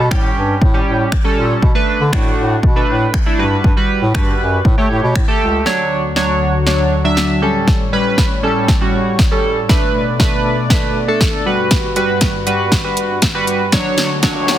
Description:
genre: dance-pop.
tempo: 119 BPM.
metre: 4/4.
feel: straight.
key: D major.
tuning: A4 = 440 Hz.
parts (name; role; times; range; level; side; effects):
clear bass clarinet; bass; 0.0-5.6 s; C#2 to A3; -17 LUFS; equal; sidechain pumping.
chorused polysynth; accompaniment; 0.1-14.6 s; F#3 to E5; -16 LUFS; right 1 dB; sidechain pumping.
deep house drum kit; drums; 0.1-14.6 s; finger snaps, hi-hat, kick drum, snare drum; -16 LUFS; equal; soft clipping on snare.
warm analog pad; sustained chords; 5.7-14.6 s; D2 to D5; -21 LUFS; left 1 dB; chorus, sidechain pumping.
riser; sound effects; 14.1-14.6 s; none; -25 LUFS; equal; none.
room: light reverb, digital ambience.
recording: dense, heavily limited modern master, high-pass filter.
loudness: -12 LUFS.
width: side -11 dB against mid.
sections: 0.0-5.7 A section; 5.7-14.6 B section.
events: build-up 5.7-14.6; drum fill 5.7-14.6; riser 14.1-14.6.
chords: 0.0 A7; 1.6 Bm7; 3.4 Gmaj7; 4.7 A7; 5.7 Dmaj7; 7.4 A7; 9.7 Bm7; 11.5 Gmaj7; 13.7 Dmaj7.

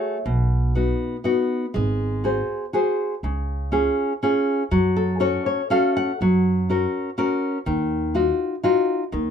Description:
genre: italian folk, Italian serenade.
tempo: 122 BPM.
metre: 3/4.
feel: straight.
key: F# harmonic minor, F# major from 6.2 s.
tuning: A4 = 439 Hz.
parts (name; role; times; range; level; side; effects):
nylon-string guitar; accompaniment; 0.0-9.3 s; B2 to F#5; -21 LUFS; left 1 dB; none.
upright bass; bass; 0.3-9.3 s; G#1 to F#2; -24 LUFS; right 1 dB; none.
room: moderate small room reverb, RT60 0.6 s.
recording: minimal, uncompressed stereo recording.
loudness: -20 LUFS.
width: side -8 dB against mid.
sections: 0.0-6.2 A section; 6.2-9.3 B section.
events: nylon-string guitar fill 0.0, 4.7-6.2.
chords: 0.3 B; 1.8 G#7; 3.2 C#; 4.7 F#m; 6.2 F#; 7.7 D#madd9.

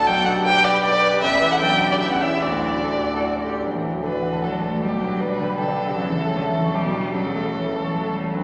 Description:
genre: quick classical-period movement for piano trio.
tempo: 154 BPM.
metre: 3/4.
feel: rubato.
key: D major.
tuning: A4 = 440 Hz.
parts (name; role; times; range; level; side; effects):
warm violin; melody; 0.0-8.1 s; G4 to G5; -24 LUFS; equal; none.
rich cello; second line; 0.0-8.4 s; D3 to B4; -29 LUFS; equal; none.
warm concert grand piano; accompaniment; 0.0-8.4 s; A1 to C#6; -26 LUFS; equal; none.
room: wet church reverb, RT60 3.0 s.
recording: none.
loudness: -21 LUFS.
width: mono.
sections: 0.0-3.6 A section; 3.6-8.4 A section.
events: none.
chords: 0.1 G/B; 1.2 A5; 1.6 G/B; 2.0 A7; 2.4 D; 4.8 G/B; 6.0 A; 6.8 G/B; 7.2 A.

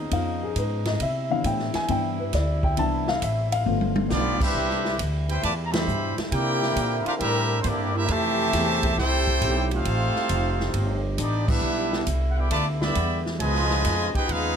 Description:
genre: jazz, big band swing.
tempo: 136 BPM.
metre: 4/4.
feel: swing 68% on 8ths.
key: C major.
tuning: A4 = 443 Hz.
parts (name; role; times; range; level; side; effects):
mellow trombone section; sustained chords; 0.0-14.6 s; C3 to Bb4; -34 LUFS; equal; none.
upright bass; bass; 0.0-14.6 s; F1 to C3; -27 LUFS; equal; none.
dark upright piano; accompaniment; 0.1-4.4 s; E3 to A5; -26 LUFS; left 3 dB; none.
swinging big-band drum kit; drums; 0.1-14.4 s; crash cymbal, hi-hat, kick drum, ride cymbal, snare drum, toms; -30 LUFS; right 1 dB; none.
clear trumpet section; melody; 4.1-14.6 s; Bb3 to B5; -26 LUFS; equal; none.
bright trombone section; second line; 4.1-14.6 s; B2 to Bb4; -29 LUFS; right 2 dB; none.
room: light reverb.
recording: none.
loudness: -22 LUFS.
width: side -7 dB against mid.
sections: 0.0-4.5 A section; 4.5-14.6 B section.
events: upright piano solo 0.0-4.5; drum fill 3.7-4.1; band accent 5.6, 11.4.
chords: 0.0 Db9; 1.0 Cmaj7; 3.7 G7; 4.5 Cmaj7; 6.3 C9; 8.1 Fmaj9; 9.9 F9; 11.6 Em7; 13.4 Db9.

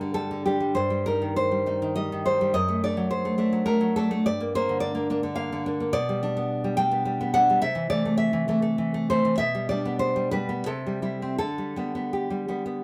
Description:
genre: romantic piece for solo classical guitar.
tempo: 79-110 BPM.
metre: 3/4.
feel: rubato.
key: G minor, G major from 5.9 s.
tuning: A4 = 440 Hz.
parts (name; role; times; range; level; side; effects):
nylon-string guitar; solo; 0.0-12.8 s; F#2 to G5; -26 LUFS; equal; none.
room: moderate studio reverb, RT60 0.5 s.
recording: band playing live in one room.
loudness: -25 LUFS.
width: mono.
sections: 0.0-12.8 A section.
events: none.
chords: 0.0 Gm; 0.8 Cm/G; 2.5 D7/F#; 4.2 Gm; 5.9 G/B; 7.6 Am/C; 9.4 G/B; 10.7 C; 11.4 G/D.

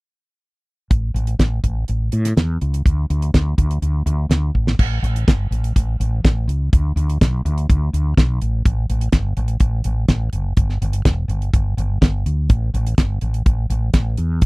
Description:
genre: classic rock.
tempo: 124 BPM.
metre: 4/4.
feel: straight.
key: A mixolydian.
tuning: A4 = 440 Hz.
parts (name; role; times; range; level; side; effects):
mellow fretless electric bass; bass; 0.9-14.5 s; E1 to A2; -19 LUFS; equal; none.
damped 70s drum kit; drums; 0.9-14.5 s; crash cymbal, hi-hat, kick drum, snare drum; -16 LUFS; equal; none.
room: little or no reverb.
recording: dry, close 1970s-style studio recording.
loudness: -16 LUFS.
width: side -26 dB against mid.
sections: 0.9-4.8 A section; 4.8-14.5 B section.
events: drum fill 4.6.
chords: none.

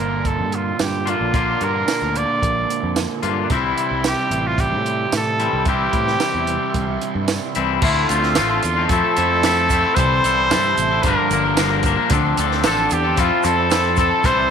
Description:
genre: indie rock.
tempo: 111 BPM.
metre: 4/4.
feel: straight.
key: unclear.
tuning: A4 = 440 Hz.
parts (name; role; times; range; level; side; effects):
bright trumpet; melody; 0.0-14.5 s; D4 to D5; -21 LUFS; right 2 dB; slapback echo.
raw garage guitar; riff; 0.0-14.5 s; G2 to A4; -25 LUFS; right 11 dB; overdrive, lush chorus, slapback echo.
twangy electric guitar; riff; 0.0-14.5 s; G2 to Bb4; -22 LUFS; left 12 dB; none.
picked electric bass; bass; 0.0-14.5 s; G1 to A2; -24 LUFS; equal; none.
compact cocktail drum kit; drums; 0.2-14.4 s; crash cymbal, hi-hat, kick drum, snare drum, tambourine; -23 LUFS; right 3 dB; none.
tine electric piano; second line; 7.8-14.5 s; E5 to C6; -30 LUFS; left 12 dB; none.
tonewheel organ; sustained chords; 7.8-14.5 s; A4 to E6; -32 LUFS; equal; none.
tube shaker; percussion; 7.8-14.4 s; none; -35 LUFS; right 16 dB; none.
room: light reverb.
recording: 1960s-style stereo with parts hard left and right.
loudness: -16 LUFS.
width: side -7 dB against mid.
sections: 0.0-7.8 A section; 7.8-14.5 B section.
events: none.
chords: 0.0 Bb; 3.5 C; 7.8 Dm7; 8.9 Fmaj7; 10.0 C6; 11.0 Gm7; 12.1 Dm7; 13.2 Fmaj7.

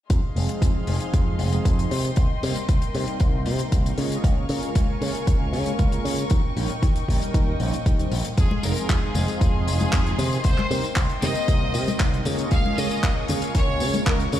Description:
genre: nu-disco, nu disco.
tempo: 116 BPM.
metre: 4/4.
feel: straight.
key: F minor.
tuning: A4 = 441 Hz.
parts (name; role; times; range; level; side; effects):
dark studio string section; sustained chords; 0.1-14.4 s; Ab4 to Db6; -33 LUFS; left 2 dB; sidechain pumping.
picked electric bass with an envelope filter; bass; 0.1-14.4 s; F1 to Db3; -26 LUFS; equal; sidechain pumping.
damped 70s drum kit; drums; 0.1-14.4 s; handclaps, hi-hat, tambourine; -31 LUFS; left 2 dB; none.
electronic kick drum; drums; 0.1-14.2 s; none; -21 LUFS; equal; none.
mellow synth brass; accompaniment; 0.4-14.4 s; F3 to Eb5; -29 LUFS; right 1 dB; chorus, digital delay.
bright symphonic violin section; melody; 8.4-14.4 s; Ab4 to F5; -30 LUFS; left 1 dB; digital delay.
congas; percussion; 8.5-14.4 s; none; -30 LUFS; left 3 dB; none.
room: small room ambience.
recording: played on a big sound system in a bare room, large studio reverb.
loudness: -20 LUFS.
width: side -12 dB against mid.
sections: 0.1-14.4 A section.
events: none.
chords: 0.1 Fm7; 1.9 Cm7; 4.0 Db6; 6.3 Eb7; 8.4 Fm7; 10.2 Cm7; 12.3 Db6.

